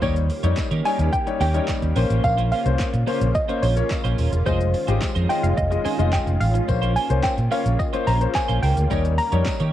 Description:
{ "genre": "dance-pop", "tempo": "108 BPM", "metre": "4/4", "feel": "straight", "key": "Bb dorian", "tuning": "A4 = 441 Hz", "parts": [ { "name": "soft round pluck", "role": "melody", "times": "0.0-9.7 s", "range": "C5 to Bb5", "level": "-26 LUFS", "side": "right 1 dB", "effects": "chorus, cassette tape, tape echo" }, { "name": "warm grand piano", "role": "accompaniment", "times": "0.0-9.5 s", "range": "G3 to Eb5", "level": "-27 LUFS", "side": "left 8 dB", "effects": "sidechain pumping" }, { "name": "soft string machine", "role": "sustained chords", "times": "0.0-9.7 s", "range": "Db3 to G4", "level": "-30 LUFS", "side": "right 1 dB", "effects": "phaser, ensemble chorus, sidechain pumping" }, { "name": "twelve-string electric guitar", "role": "riff", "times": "0.0-9.7 s", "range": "Bb3 to Db5", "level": "-32 LUFS", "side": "right 10 dB", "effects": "lush chorus" }, { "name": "vintage muted fingered electric bass", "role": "bass", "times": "0.0-9.7 s", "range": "Eb1 to Eb3", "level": "-21 LUFS", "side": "equal", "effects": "sidechain pumping" }, { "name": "deep house drum kit", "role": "drums", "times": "0.0-9.7 s", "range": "handclaps, hi-hat, kick drum, shaker, snare drum", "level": "-28 LUFS", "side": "equal", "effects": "overdrive, cassette tape" }, { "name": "tambourine", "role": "percussion", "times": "0.0-9.6 s", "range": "none", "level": "-45 LUFS", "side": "right 12 dB", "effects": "none" } ], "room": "light reverb", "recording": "home recording on cassette", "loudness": "-19 LUFS", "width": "side -12 dB against mid", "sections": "0.0-9.7 A section", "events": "none", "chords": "0.0 Eb7; 2.0 Bbmadd9; 4.5 Fm7; 6.7 Bbmadd9; 8.9 Eb7" }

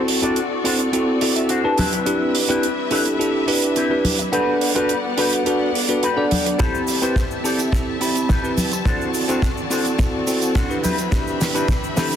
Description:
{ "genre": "nu-disco, nu disco", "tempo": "106 BPM", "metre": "4/4", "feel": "straight", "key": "unclear", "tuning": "A4 = 437 Hz", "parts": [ { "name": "bell-like tine electric piano", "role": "accompaniment", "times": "0.0-12.2 s", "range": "C4 to B5", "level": "-20 LUFS", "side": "right 1 dB", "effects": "sidechain pumping, analog delay" }, { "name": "rich studio string section", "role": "sustained chords", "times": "0.0-12.2 s", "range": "G3 to B5", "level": "-27 LUFS", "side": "left 2 dB", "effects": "sidechain pumping" }, { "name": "damped 70s drum kit", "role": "drums", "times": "0.1-12.2 s", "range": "hi-hat, shaker, snare drum", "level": "-25 LUFS", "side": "right 3 dB", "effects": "soft clipping on snare" }, { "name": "electric guitar with an envelope filter", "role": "riff", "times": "0.2-12.1 s", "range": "C4 to A5", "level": "-26 LUFS", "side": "left 4 dB", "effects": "lush chorus, low-pass filter, analog delay" }, { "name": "congas and cabasa", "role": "percussion", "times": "1.8-12.2 s", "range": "none", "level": "-26 LUFS", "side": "left 1 dB", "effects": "none" }, { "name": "kick drum", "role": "drums", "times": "6.6-11.8 s", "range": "none", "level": "-21 LUFS", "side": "equal", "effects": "none" } ], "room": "moderate lush hall reverb, RT60 2.5 s", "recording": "dense, heavily limited modern master", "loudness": "-17 LUFS", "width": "side -9 dB against mid", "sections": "0.0-12.2 A section", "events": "build-up 0.0-12.2; clean electric guitar fill 0.9-2.1; drum fill 6.6-12.2", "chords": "0.0 D7; 1.8 Cmaj7; 4.3 Gmaj7; 6.6 Am7; 8.9 D7; 10.8 Cmaj7" }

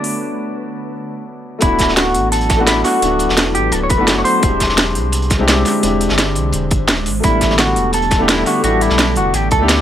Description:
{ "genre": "liquid drum and bass", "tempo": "171 BPM", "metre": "4/4", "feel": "straight", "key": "D major", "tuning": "A4 = 440 Hz", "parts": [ { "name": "clean electric guitar", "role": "melody", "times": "0.0-9.8 s", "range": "D4 to C#5", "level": "-18 LUFS", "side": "equal", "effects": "wide subtle chorus, dub echo" }, { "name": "warm concert grand piano", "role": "accompaniment", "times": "0.0-9.8 s", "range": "G3 to C#5", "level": "-19 LUFS", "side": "left 2 dB", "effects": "dub echo" }, { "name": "ethereal airy pad", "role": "sustained chords", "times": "0.0-9.8 s", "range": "D3 to B#4", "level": "-25 LUFS", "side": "right 1 dB", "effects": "ensemble chorus, built-in reverb, sidechain pumping" }, { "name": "drum and bass drum kit", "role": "drums", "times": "0.0-9.8 s", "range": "hi-hat, snare drum", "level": "-17 LUFS", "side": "equal", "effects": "none" }, { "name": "sub bass with octave", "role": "bass", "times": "1.6-9.8 s", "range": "D1 to D2", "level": "-20 LUFS", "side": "equal", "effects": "none" }, { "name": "crunchy breakbeat drum kit", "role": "drums", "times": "1.6-9.8 s", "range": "hi-hat, snare drum", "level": "-22 LUFS", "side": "equal", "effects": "high-pass filter on hats, high-pass filter on snare, high-pass filter on room" }, { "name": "electronic kick drum", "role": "drums", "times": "1.6-9.6 s", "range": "none", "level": "-17 LUFS", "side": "equal", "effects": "none" } ], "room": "light reverb", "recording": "none", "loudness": "-12 LUFS", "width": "side -10 dB against mid", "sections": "0.0-1.6 A section; 1.6-9.8 B section", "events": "filter sweep on grand piano 0.0-1.6; filter sweep on ambient pad 0.0-1.6; drop 1.6-9.8", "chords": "0.0 Bm7; 1.6 D69; 4.4 E7alt; 7.1 A7sus4" }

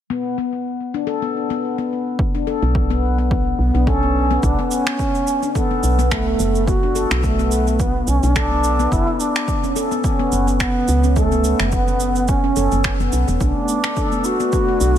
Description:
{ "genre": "organic downtempo", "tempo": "107 BPM", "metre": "4/4", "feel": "swing 55% on 16ths", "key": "B minor", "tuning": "A4 = 440 Hz", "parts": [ { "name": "handpan", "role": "arpeggios", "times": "0.1-15.0 s", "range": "B3 to A4", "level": "-22 LUFS", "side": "left 5 dB", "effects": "low-pass filter, ping-pong delay" }, { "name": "electronic kick drum", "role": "drums", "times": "2.2-14.7 s", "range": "none", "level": "-22 LUFS", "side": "equal", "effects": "overdrive" }, { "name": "woody FM bass", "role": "bass", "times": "2.6-15.0 s", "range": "E1 to C#2", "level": "-19 LUFS", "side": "equal", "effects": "sidechain pumping" }, { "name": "breathy mellow low ney", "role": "melody", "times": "3.6-15.0 s", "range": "A3 to F#4", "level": "-21 LUFS", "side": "right 2 dB", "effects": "ping-pong delay" }, { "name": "electronic cabasa and finger snaps", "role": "drums", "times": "4.4-15.0 s", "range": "none", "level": "-26 LUFS", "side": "right 2 dB", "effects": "overdrive, low-pass filter on perc, low-pass filter on snare, low-pass filter on room" }, { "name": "warm analog pad", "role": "sustained chords", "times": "13.4-15.0 s", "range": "A3 to D4", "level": "-26 LUFS", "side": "right 3 dB", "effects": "chorus, sidechain pumping" } ], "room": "light reverb", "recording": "none", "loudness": "-16 LUFS", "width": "side -10 dB against mid", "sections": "0.0-4.4 A section; 4.4-15.0 B section", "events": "none", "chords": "0.0 N.C.; 4.4 B7(no3); 8.9 F#sus4; 13.4 Bm7" }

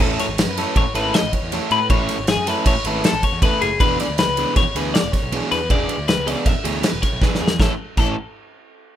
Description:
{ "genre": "math rock and midwest emo", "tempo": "158 BPM", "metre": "5/4", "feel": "straight", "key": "A major", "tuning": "A4 = 440 Hz", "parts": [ { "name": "twelve-string electric guitar", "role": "arpeggios", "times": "0.0-8.2 s", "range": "G#4 to E5", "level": "-22 LUFS", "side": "left 6 dB", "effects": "spring reverb" }, { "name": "crunchy overdriven guitar", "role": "riff", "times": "0.0-8.1 s", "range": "A2 to A4", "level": "-24 LUFS", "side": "right 3 dB", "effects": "none" }, { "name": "fuzz picked electric bass", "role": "bass", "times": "0.0-8.2 s", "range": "E1 to A2", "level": "-28 LUFS", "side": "right 1 dB", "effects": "overdrive" }, { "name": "loose indie drum kit", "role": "drums", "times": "0.0-8.1 s", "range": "crash cymbal, kick drum, ride cymbal, snare drum", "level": "-20 LUFS", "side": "equal", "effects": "none" } ], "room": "little or no reverb", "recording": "rough home demo mix", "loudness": "-17 LUFS", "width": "side -11 dB against mid", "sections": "0.0-7.6 A section; 7.6-9.0 B section", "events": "drum fill 7.2-7.6", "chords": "0.0 Amaj7; 3.8 E7; 7.6 A" }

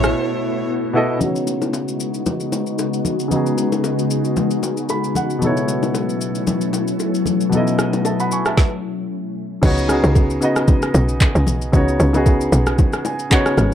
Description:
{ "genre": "amapiano", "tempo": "114 BPM", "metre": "4/4", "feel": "swing 55% on 16ths", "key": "C# minor", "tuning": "A4 = 441 Hz", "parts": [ { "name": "bright violin", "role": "melody", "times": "0.0-0.7 s", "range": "C#5", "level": "-28 LUFS", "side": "equal", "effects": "tape echo" }, { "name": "warm concert grand piano", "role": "accompaniment", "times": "0.0-13.7 s", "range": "B2 to C#6", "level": "-21 LUFS", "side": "equal", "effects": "low-pass filter" }, { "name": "glassy FM pad", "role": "sustained chords", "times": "0.0-8.5 s", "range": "B2 to F#4", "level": "-21 LUFS", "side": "left 2 dB", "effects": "ensemble chorus, built-in reverb, low-pass filter" }, { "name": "tight log drum bass", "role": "bass", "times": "0.0-0.1, 9.6-13.7 s", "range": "G#1 to C#2", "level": "-17 LUFS", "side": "equal", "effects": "none" }, { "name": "smooth R&B drum kit", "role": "drums", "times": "0.0-13.7 s", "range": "crash cymbal, handclaps, kick drum, rim click, shaker, snare drum", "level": "-18 LUFS", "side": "equal", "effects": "none" }, { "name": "congas and bongos", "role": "percussion", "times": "1.2-13.7 s", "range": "none", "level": "-25 LUFS", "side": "left 4 dB", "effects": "none" } ], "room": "digital ambience", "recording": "dark, warm production", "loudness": "-16 LUFS", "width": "side -10 dB against mid", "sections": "0.0-1.2 A section; 1.2-9.6 B section; 9.6-13.7 C section", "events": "drop 0.0-1.2; break 0.2-1.2; filter sweep 1.2-9.6; grand piano fill 4.6-5.4, 12.8-13.7; stop 8.6-9.6", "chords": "0.0 B9sus4; 1.2 C#9sus4; 5.4 B9sus4; 9.6 C#9sus4" }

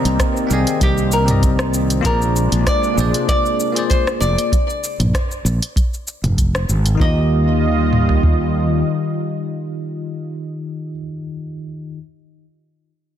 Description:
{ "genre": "sunset chillout", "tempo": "97 BPM", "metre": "4/4", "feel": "swing 53% on 16ths", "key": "Eb major", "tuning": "A4 = 440 Hz", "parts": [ { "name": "nylon-string guitar", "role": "melody", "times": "0.0-10.9 s", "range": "G4 to Eb5", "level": "-22 LUFS", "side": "left 1 dB", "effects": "digital delay" }, { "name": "bell-like tine electric piano", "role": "accompaniment", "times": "0.0-12.0 s", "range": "Eb3 to G5", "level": "-24 LUFS", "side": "moving between left 7 dB and right 1 dB", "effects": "auto-pan, digital delay" }, { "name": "lush unison pad", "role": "sustained chords", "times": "0.0-10.2 s", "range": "C3 to Eb5", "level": "-23 LUFS", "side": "left 1 dB", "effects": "chorus" }, { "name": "fretless electric bass", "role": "bass", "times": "0.0-8.8 s", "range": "F1 to Eb2", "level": "-17 LUFS", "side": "equal", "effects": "none" }, { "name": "deep house drum kit", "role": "drums", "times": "0.1-7.0 s", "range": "hi-hat, rim click, shaker, toms", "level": "-23 LUFS", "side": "equal", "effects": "none" }, { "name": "soft vintage rhythm box", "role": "drums", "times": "0.2-8.4 s", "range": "kick drum, toms", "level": "-18 LUFS", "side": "equal", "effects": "overdrive" } ], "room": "light reverb, digital ambience", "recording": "dense, heavily limited modern master", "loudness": "-15 LUFS", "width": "side -10 dB against mid", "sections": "0.0-7.0 A section; 7.0-9.5 B section", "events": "none", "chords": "0.0 Cm9; 2.1 Bb9; 7.0 Ebadd9" }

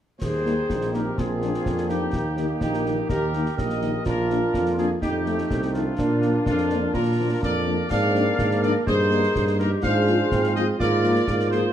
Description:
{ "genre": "military-style march for wind band", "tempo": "125 BPM", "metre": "2/4", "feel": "straight", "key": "Eb major", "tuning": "A4 = 440 Hz", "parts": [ { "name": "clear trumpet section", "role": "melody", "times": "0.2-11.7 s", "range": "F4 to F5", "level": "-29 LUFS", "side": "equal", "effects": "none" }, { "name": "mellow woodwind section", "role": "second line", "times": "0.2-11.6 s", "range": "D4 to D5", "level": "-28 LUFS", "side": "left 2 dB", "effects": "none" }, { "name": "warm trombone section", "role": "sustained chords", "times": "0.2-11.7 s", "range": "G3 to F4", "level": "-29 LUFS", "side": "right 1 dB", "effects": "none" }, { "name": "warm tuba", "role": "bass", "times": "0.2-11.7 s", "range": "Bb1 to Bb2", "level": "-25 LUFS", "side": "right 2 dB", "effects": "none" }, { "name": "concert snare drum, clash cymbals and concert bass drum", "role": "drums", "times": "0.2-11.6 s", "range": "none", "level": "-31 LUFS", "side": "equal", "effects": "none" }, { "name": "mellow French horn section", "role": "accompaniment", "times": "0.5-11.6 s", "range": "Eb3 to F4", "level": "-30 LUFS", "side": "left 4 dB", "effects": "none" }, { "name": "clear euphonium", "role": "second line", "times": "0.7-11.7 s", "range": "Bb3 to G4", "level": "-29 LUFS", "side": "right 3 dB", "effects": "none" } ], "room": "wet large studio reverb, RT60 1.3 s", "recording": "dark, warm production", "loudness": "-20 LUFS", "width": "side -10 dB against mid", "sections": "0.2-11.7 A section", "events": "none", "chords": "0.2 Eb; 1.2 Bb7; 2.1 Eb; 4.1 Bb; 5.0 F7; 6.0 Bb; 7.9 Bb7/Ab; 8.9 Eb/G; 9.8 Fm/Ab; 10.8 Bb7/Ab" }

